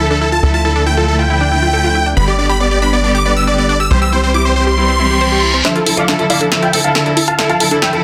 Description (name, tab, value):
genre	uplifting trance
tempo	138 BPM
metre	4/4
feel	straight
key	D dorian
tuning	A4 = 439 Hz
part	big supersaw lead	melody	0.0-8.0 s	A4 to E6	-18 LUFS	equal	low-pass filter, delay
part	warm studio string section	sustained chords	0.0-8.0 s	D3 to A4	-20 LUFS	equal	none
part	unison pluck	arpeggios	0.0-8.0 s	B3 to C5	-23 LUFS	equal	dub echo
part	tight sequencer bass	bass	0.0-5.6 s	G1 to D2	-18 LUFS	equal	none
part	reverse cymbal	sound effects	5.0-5.6 s	none	-21 LUFS	equal	none
part	dark baby grand piano	second line	5.6-8.0 s	A4 to A5	-24 LUFS	equal	low-pass filter, dub echo
part	punchy analog drum machine	drums	5.6-8.0 s	hi-hat, snare drum	-19 LUFS	equal	high-pass filter on snare, low-pass filter on snare, high-pass filter on hats, low-pass filter on hats
room	moderate lush hall reverb, RT60 1.7 s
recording	dense, heavily limited modern master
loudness	-13 LUFS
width	mono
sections	0.0-5.6 A section; 5.6-8.0 B section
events	reverse cymbal 5.0-5.6; build-up 5.6-8.0; drum fill 5.6-8.0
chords	0.0 Dmadd9; 2.2 G; 3.9 C; 5.6 Dmadd9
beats	| 0.43 0.86 1.30 1.73 | 2.17 2.60 3.04 3.47 | 3.91 4.34 4.78 5.21 | 5.65 6.08 6.52 6.95 | 7.39 7.82